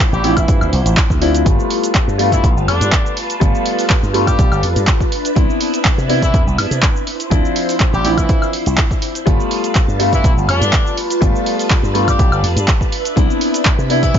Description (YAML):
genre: filtered disco house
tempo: 123 BPM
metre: 4/4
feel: straight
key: G mixolydian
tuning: A4 = 439 Hz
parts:
  - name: warm concert grand piano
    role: accompaniment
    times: 0.0-14.2 s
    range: F3 to F4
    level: -19 LUFS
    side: left 2 dB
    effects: phaser, vintage 12-bit sampler grit, sidechain pumping, low-pass filter
  - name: phased string machine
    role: sustained chords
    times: 0.0-14.2 s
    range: D4 to A5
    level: -24 LUFS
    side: right 1 dB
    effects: ensemble chorus, phaser, sidechain pumping, low-pass filter
  - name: electronic kick drum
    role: drums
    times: 0.0-14.2 s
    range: none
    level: -15 LUFS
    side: equal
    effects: none
  - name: punchy analog drum machine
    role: drums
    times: 0.0-14.2 s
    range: handclaps, hi-hat, shaker, woodblock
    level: -20 LUFS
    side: equal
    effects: sidechain pumping on hats, sidechain pumping on perc
  - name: brilliant horn section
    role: melody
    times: 0.1-14.2 s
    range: D3 to G4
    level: -24 LUFS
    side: left 1 dB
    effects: sidechain pumping, low-pass filter, dub echo
  - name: slap bass with an envelope filter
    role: bass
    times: 0.1-14.2 s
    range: G1 to C3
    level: -18 LUFS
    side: equal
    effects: sidechain pumping, low-pass filter
room: little or no reverb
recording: nothing above 7.5 kHz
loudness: -12 LUFS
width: side -8 dB against mid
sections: 0.0-14.2 A section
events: none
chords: 0.0 Dm9; 1.5 G9; 5.1 Cmaj9; 7.1 Dm9; 9.3 G9; 12.9 Cmaj9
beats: 0.00 0.49 0.97 | 1.46 1.95 2.44 2.92 | 3.41 3.90 4.39 4.88 | 5.36 5.85 6.34 6.83 | 7.32 7.80 8.29 8.78 | 9.27 9.76 10.24 10.73 | 11.22 11.71 12.19 12.68 | 13.17 13.66 14.14